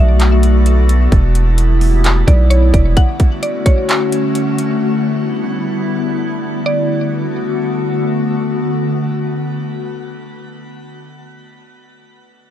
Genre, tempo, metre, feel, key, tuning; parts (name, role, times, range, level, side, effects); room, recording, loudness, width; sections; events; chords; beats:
hip hop, atmospheric cloud-rap; 130 BPM; 4/4; half-time; B minor; A4 = 440 Hz
mallet-like synth pluck; melody; 0.0-3.9, 6.7-8.0 s; C#5 to F#5; -24 LUFS; right 1 dB; chorus, ping-pong delay
glassy FM pad; sustained chords; 0.0-10.6 s; D3 to F#4; -18 LUFS; left 2 dB; ensemble chorus, built-in reverb, sidechain pumping
long sustained 808-style bass; bass; 0.0-3.0 s; E1 to B1; -11 LUFS; equal
drifting glass-harmonics texture; texture; 0.0-1.1 s; B3 to D5; -31 LUFS; right 1 dB; chorus, built-in reverb
trap drum kit; drums; 0.2-4.7 s; handclaps, hi-hat, kick drum; -15 LUFS; equal
little or no reverb; dark, warm production; -12 LUFS; side -11 dB against mid
0.0-6.7 A section; 6.7-10.4 B section
0.0 Bm7; 1.1 Em7; 3.0 Dmaj7; 4.8 G6; 6.7 Bm7
0.20 0.66 | 1.12 1.58 2.04 2.51 | 2.97 3.43 3.89 4.35 | 4.81 5.28 5.74 6.20 | 6.66 7.12 7.58 8.04 | 8.51 8.97 9.43 9.89